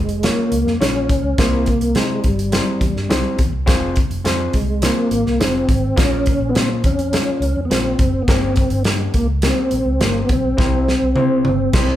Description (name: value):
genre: uptempo 1960s-style soul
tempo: 104 BPM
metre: 4/4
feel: straight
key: F harmonic minor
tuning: A4 = 440 Hz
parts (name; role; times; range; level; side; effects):
- tonewheel organ; melody; 0.0-12.0 s; G3 to Db4; -19 LUFS; equal; chorus vibrato, slow rotary speaker
- fingered electric bass; bass; 0.0-11.9 s; F1 to C3; -22 LUFS; equal; none
- natural country drum kit; drums; 0.1-11.9 s; crash cymbal, hi-hat, kick drum, snare drum, toms; -19 LUFS; equal; none
- overdriven reed electric piano; accompaniment; 0.2-11.9 s; G2 to Db5; -25 LUFS; left 2 dB; none
room: light reverb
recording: band playing live in one room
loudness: -15 LUFS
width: side -12 dB against mid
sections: 0.0-12.0 A section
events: drum fill 10.6-12.0; band accent 11.7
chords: 0.0 Bbm; 1.4 C; 3.7 Fm; 6.0 Bbm; 8.3 Gdim; 10.6 C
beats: 0.23 0.81 | 1.38 1.96 2.53 3.11 | 3.68 4.25 4.83 5.41 | 5.98 6.55 7.13 7.71 | 8.28 8.86 9.43 10.01 | 10.58 11.15 11.73